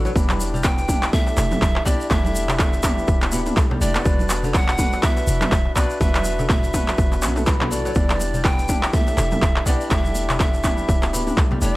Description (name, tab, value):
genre	afro house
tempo	123 BPM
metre	4/4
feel	swing 58% on 16ths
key	E minor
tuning	A4 = 440 Hz
part	flamenco guitar	arpeggios	0.0-11.8 s	F#2 to D4	-30 LUFS	right 1 dB	sidechain pumping, tape echo
part	barky tine electric piano	stabs	0.0-11.8 s	D4 to B4	-29 LUFS	left 3 dB	sidechain pumping
part	warm 808-style bass	bass	0.0-11.8 s	D1 to B1	-25 LUFS	equal	sidechain pumping
part	darbuka	percussion	0.0-11.6 s	none	-32 LUFS	left 2 dB	none
part	tube shaker	percussion	0.1-11.7 s	none	-33 LUFS	left 1 dB	none
part	electronic kick drum	drums	0.2-11.5 s	none	-20 LUFS	equal	overdrive, studio reverb
part	congas	percussion	0.2-11.7 s	none	-31 LUFS	right 2 dB	none
part	deep house drum kit	drums	0.3-11.5 s	handclaps, toms	-25 LUFS	equal	overdrive, studio reverb
part	breathy bright pan flute	melody	0.6-11.8 s	D5 to G5	-27 LUFS	right 1 dB	tape echo
room	small room ambience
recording	dry, gritty hardware recording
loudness	-17 LUFS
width	side -19 dB against mid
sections	0.0-11.8 A section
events	none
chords	0.2 Em7; 4.1 Bm; 8.0 Em7